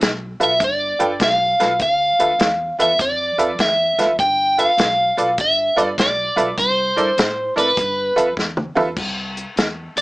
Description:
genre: electric blues shuffle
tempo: 100 BPM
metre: 4/4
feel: swing 67% on 8ths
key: unclear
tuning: A4 = 440 Hz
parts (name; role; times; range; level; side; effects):
- upright bass; bass; 0.0-10.0 s; F1 to A2; -32 LUFS; equal; none
- warm soul drum kit; drums; 0.0-10.0 s; crash cymbal, hi-hat, kick drum, snare drum, toms; -21 LUFS; equal; none
- overdriven semi-hollow guitar; melody; 0.4-10.0 s; B4 to G5; -16 LUFS; equal; none
- tack piano; accompaniment; 0.4-8.9 s; E4 to G5; -19 LUFS; right 2 dB; none
room: light reverb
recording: small speaker sound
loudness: -15 LUFS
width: side -21 dB against mid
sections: 0.0-9.0 A section; 9.0-10.0 A section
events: drum fill 8.4-9.0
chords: 0.0 G13; 6.6 C13; 7.8 G13; 9.0 C

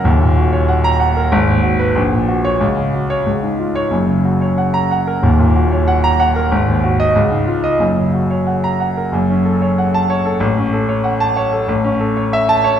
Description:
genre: classical, virtuoso piano study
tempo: 93 BPM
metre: 2/4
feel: rubato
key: F# major, F# minor from 9.1 s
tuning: A4 = 440 Hz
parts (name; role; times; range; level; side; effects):
- warm grand piano; solo; 0.0-12.8 s; D#1 to A#5; -13 LUFS; equal; none
room: wet recital hall reverb, RT60 1.5 s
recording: heard from further back in the room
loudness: -13 LUFS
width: side -9 dB against mid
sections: 0.0-9.1 A section; 9.1-12.8 B section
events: none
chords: 0.1 D#m7; 1.3 G#m7; 2.0 F#/A#; 2.6 F#5/C#; 3.3 C#; 3.9 F#; 5.2 D#m7; 6.5 G#5; 7.2 C#add9; 7.8 F#; 9.1 F#m; 10.4 F#m/A; 11.7 A

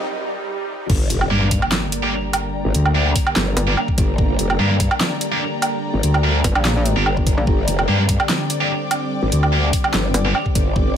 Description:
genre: heavy wobble dubstep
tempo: 146 BPM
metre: 4/4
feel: swing 54% on 16ths, half-time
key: G minor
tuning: A4 = 441 Hz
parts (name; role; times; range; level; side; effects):
- supersaw pad; sustained chords; 0.0-11.0 s; C2 to Eb4; -26 LUFS; right 1 dB; sidechain pumping, low-pass filter
- riser, swell and impact; sound effects; 0.0-2.5 s; none; -26 LUFS; equal; none
- airy breathy pad; texture; 0.0-11.0 s; D5 to D6; -29 LUFS; left 4 dB; chorus, sidechain pumping
- growl bass; bass; 0.9-10.9 s; F1 to G2; -19 LUFS; equal; chorus, overdrive
- big-room dance drum kit; drums; 0.9-10.6 s; crash cymbal, handclaps, hi-hat, snare drum, woodblock; -21 LUFS; right 2 dB; overdrive, small room ambience
- electronic kick drum; drums; 0.9-10.8 s; none; -19 LUFS; equal; small room ambience
- heavy high-gain guitar; stabs; 1.3-10.3 s; Bb3 to G4; -25 LUFS; right 1 dB; distortion, digital delay
- metallic wobble bass; bass; 3.6-3.8, 6.4-7.5, 10.1-10.3 s; G1 to Bb1; -18 LUFS; equal; chorus, overdrive
room: little or no reverb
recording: high-pass filter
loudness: -16 LUFS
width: side -9 dB against mid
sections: 0.9-11.0 A section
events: break 0.1-0.9; swell 0.1-0.9; drop 0.9-11.0; impact 0.9-2.5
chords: 0.0 Cm; 0.9 Gm

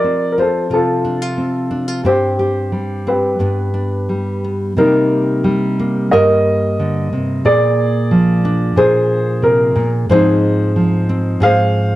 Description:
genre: acoustic folk-pop ballad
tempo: 90 BPM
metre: 4/4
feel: straight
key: C minor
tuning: A4 = 441 Hz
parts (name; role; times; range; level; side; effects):
- warm upright piano; melody; 0.0-12.0 s; Eb4 to F5; -16 LUFS; left 1 dB; none
- nylon-string guitar; accompaniment; 0.0-12.0 s; G2 to Bb4; -16 LUFS; equal; none
room: light reverb, studio reverb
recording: dry, close 1970s-style studio recording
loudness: -13 LUFS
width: side -15 dB against mid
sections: 0.0-4.7 A section; 4.7-12.0 B section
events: none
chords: 0.0 F; 2.0 Gsus4; 3.4 G; 4.7 Cm7; 7.4 Bb7; 10.1 Fm7/Ab

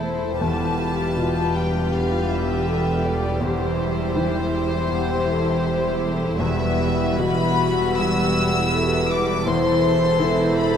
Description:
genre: cinematic, emotional film score for orchestra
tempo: 80 BPM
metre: 4/4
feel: rubato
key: E minor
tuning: A4 = 439 Hz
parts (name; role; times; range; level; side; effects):
- warm symphonic violin section; melody; 0.0-10.8 s; C5 to E6; -27 LUFS; left 5 dB; none
- warm symphonic violin section; second line; 0.0-10.8 s; E4 to C5; -28 LUFS; equal; none
- dark symphonic viola section; accompaniment; 0.0-10.8 s; E3 to F4; -28 LUFS; right 3 dB; none
- warm baby grand piano; accompaniment; 0.0-10.8 s; E2 to E3; -28 LUFS; left 1 dB; none
- mellow French horn section; sustained chords; 0.0-10.8 s; G3 to C5; -27 LUFS; left 3 dB; none
- concert harp; arpeggios; 0.0-10.8 s; E2 to G5; -28 LUFS; left 5 dB; none
- warm symphonic cello section; bass; 0.0-10.8 s; E2; -28 LUFS; right 3 dB; none
- warm symphonic double bass section; bass; 0.0-10.8 s; E1; -27 LUFS; right 3 dB; none
room: wet scoring stage reverb, RT60 1.6 s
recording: none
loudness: -19 LUFS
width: side -8 dB against mid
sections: 0.0-10.8 A section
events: none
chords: 0.4 G7/E; 3.4 C/E; 6.4 Emadd9; 9.5 Am/E

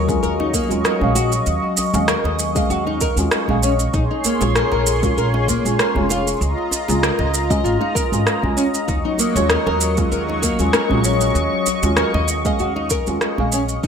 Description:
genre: organic downtempo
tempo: 97 BPM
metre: 4/4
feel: swing 54% on 16ths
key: Eb dorian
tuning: A4 = 441 Hz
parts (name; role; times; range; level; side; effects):
- felt-muted upright piano; accompaniment; 0.0-13.8 s; Ab3 to F5; -23 LUFS; right 1 dB; wide subtle chorus, sidechain pumping, ping-pong delay
- warm analog pad; sustained chords; 0.0-13.9 s; Gb3 to Db6; -23 LUFS; left 1 dB; chorus, sidechain pumping
- flamenco guitar; arpeggios; 0.0-13.9 s; Bb3 to Eb5; -23 LUFS; left 2 dB; analog chorus, ping-pong delay
- upright bass; bass; 0.0-13.9 s; F1 to Eb2; -22 LUFS; equal; sidechain pumping
- electronic kick drum; drums; 0.1-13.9 s; none; -24 LUFS; equal; overdrive
- electronic shaker and rim click; drums; 0.1-13.9 s; none; -22 LUFS; right 2 dB; overdrive, gated reverb
- djembe; percussion; 0.1-13.5 s; none; -30 LUFS; right 1 dB; none
room: moderate plate reverb, RT60 1.7 s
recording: bright 1980s-style digital production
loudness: -16 LUFS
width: side -7 dB against mid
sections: 0.0-13.9 A section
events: fade-out 12.2-13.9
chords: 0.0 Ebm7; 3.9 Bbm9; 6.4 Db69; 8.9 Ebm7

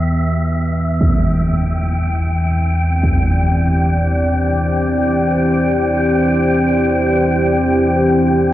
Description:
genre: dark ambient drone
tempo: free time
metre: none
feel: none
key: unclear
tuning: A4 = 438 Hz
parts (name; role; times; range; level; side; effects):
- dark analog pad; sustained chords; 0.0-8.5 s; E3 to G5; -16 LUFS; equal; chorus
- deep rumbling drone; drone; 0.0-8.5 s; E2 to E3; -18 LUFS; equal; built-in reverb
- wind-like tuned noise texture; texture; 0.0-8.5 s; E5 to G5; -22 LUFS; left 1 dB; built-in reverb
- impact; percussion; 1.0-3.2 s; none; -22 LUFS; right 1 dB; low-pass filter on sfx
room: wet cathedral reverb, RT60 5.9 s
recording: worn, warbling old tape, cassette tape, warbly pitch drift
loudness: -13 LUFS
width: side -14 dB against mid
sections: 0.0-8.5 A section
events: filter sweep on synth drone 0.0-8.5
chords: 0.0 Csus2/E

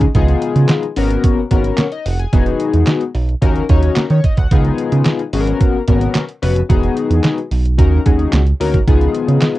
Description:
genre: early-eighties boogie funk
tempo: 110 BPM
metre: 4/4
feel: straight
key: G# minor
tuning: A4 = 441 Hz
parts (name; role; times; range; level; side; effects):
- chorused polysynth; accompaniment; 0.0-9.6 s; B3 to G#5; -18 LUFS; left 5 dB; cassette tape
- chorused synth bass; bass; 0.0-9.4 s; E1 to D#3; -15 LUFS; right 1 dB; none
- detuned 8-bit digital drum machine; drums; 0.0-9.6 s; handclaps, hi-hat, kick drum, snare drum; -15 LUFS; right 1 dB; cassette tape
room: little or no reverb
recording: home recording on cassette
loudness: -12 LUFS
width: side -16 dB against mid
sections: 0.0-9.6 A section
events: none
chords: 0.1 C#9; 1.0 G#m11; 2.3 Emaj9; 3.4 D#m7; 4.5 C#9; 5.3 G#m11; 6.7 Emaj9; 7.8 D#m7; 8.9 C#9

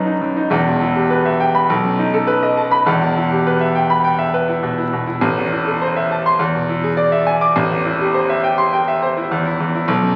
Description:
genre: classical, virtuoso piano study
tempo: 102 BPM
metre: 4/4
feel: rubato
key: E minor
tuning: A4 = 438 Hz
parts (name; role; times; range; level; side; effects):
- clear concert grand piano; solo; 0.0-10.2 s; E1 to D6; -17 LUFS; equal; none
room: wet recital hall reverb, RT60 1.7 s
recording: very old 78 rpm record, vinyl crackle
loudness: -17 LUFS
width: mono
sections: 0.5-10.2 A section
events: none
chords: 0.0 B; 0.5 Em; 1.7 B7; 2.9 Em; 5.2 Am; 6.4 E7; 7.6 Am7

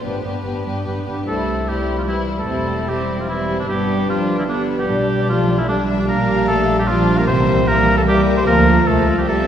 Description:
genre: quick classical-period movement for symphony orchestra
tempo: 150 BPM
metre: 3/4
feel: straight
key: C major, F major from 6.1 s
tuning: A4 = 437 Hz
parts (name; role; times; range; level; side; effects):
- dark studio violin section; melody; 0.0-9.5 s; B4 to F5; -30 LUFS; left 4 dB; none
- warm studio violin section; second line; 0.0-9.5 s; A3 to B4; -27 LUFS; left 3 dB; none
- dark studio viola section; accompaniment; 0.0-9.5 s; F3 to D4; -23 LUFS; right 1 dB; none
- dark chamber double bass section; bass; 0.0-9.5 s; E1 to D2; -23 LUFS; right 1 dB; none
- warm chamber cello section; bass; 0.0-9.5 s; G2 to D4; -24 LUFS; right 3 dB; none
- warm oboe; second line; 1.3-9.5 s; D4 to C5; -21 LUFS; equal; none
- warm French horn section; sustained chords; 1.3-9.5 s; D3 to C4; -22 LUFS; left 2 dB; none
- timpani; percussion; 7.3-7.8 s; C3; -25 LUFS; left 1 dB; none
room: wet concert hall reverb, RT60 2.2 s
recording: heard from further back in the room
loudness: -15 LUFS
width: side -9 dB against mid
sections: 0.0-1.3 A section; 1.3-9.5 B section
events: none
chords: 0.0 G; 1.3 C; 2.5 C/E; 3.7 G; 4.9 G/B; 6.1 Gm7/Bb; 7.3 C7; 8.5 Dm; 8.9 F/C

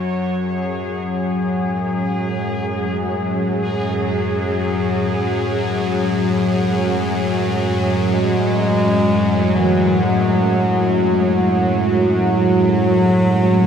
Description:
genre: dark ambient drone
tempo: free time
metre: none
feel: none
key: F# minor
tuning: A4 = 435 Hz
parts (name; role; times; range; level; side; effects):
- bowed-like drone; drone; 0.0-13.7 s; F#2 to F#3; -19 LUFS; left 1 dB; built-in reverb
- bubbling stepped-filter texture; texture; 0.0-13.7 s; G#4 to C#5; -27 LUFS; equal; chorus, built-in reverb
- sweeping resonant pad; sustained chords; 1.4-13.7 s; A2 to F#4; -20 LUFS; right 2 dB; chorus
- dark bass clarinet; melody; 8.1-13.7 s; E3 to G#3; -20 LUFS; equal; tape echo
room: wet huge ambient reverb, RT60 7.5 s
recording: faint mains hum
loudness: -16 LUFS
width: side -8 dB against mid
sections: 0.4-13.7 A section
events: fade-out on synth texture 0.4-13.7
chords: 0.4 F#madd9

